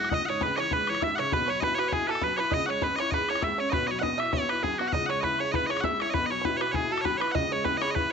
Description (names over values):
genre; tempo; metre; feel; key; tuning
celtic folk, Celtic reel; 199 BPM; 4/4; swing 54% on 8ths; C# minor; A4 = 441 Hz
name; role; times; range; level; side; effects
loud bright bagpipes; melody; 0.0-8.1 s; F#4 to F#5; -28 LUFS; right 1 dB; none
dark upright piano; accompaniment; 0.0-8.1 s; B1 to G#4; -34 LUFS; left 2 dB; none
bodhran; percussion; 0.0-8.0 s; none; -32 LUFS; left 5 dB; none
bluegrass banjo; second line; 0.1-8.1 s; F#4 to E5; -32 LUFS; right 11 dB; none
bright wooden whistle; second line; 0.1-8.1 s; F#5 to E6; -36 LUFS; left 10 dB; none
room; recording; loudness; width
moderate echo chamber reverb, RT60 1.7 s, small room ambience; 1960s-style stereo with parts hard left and right, nothing above 8.0 kHz; -24 LUFS; side -6 dB against mid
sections
0.1-8.1 A section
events
none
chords
0.1 C#m; 1.3 Bsus4; 2.5 C#m; 3.7 Bsus4; 4.9 C#m; 6.1 Bsus4; 7.3 C#m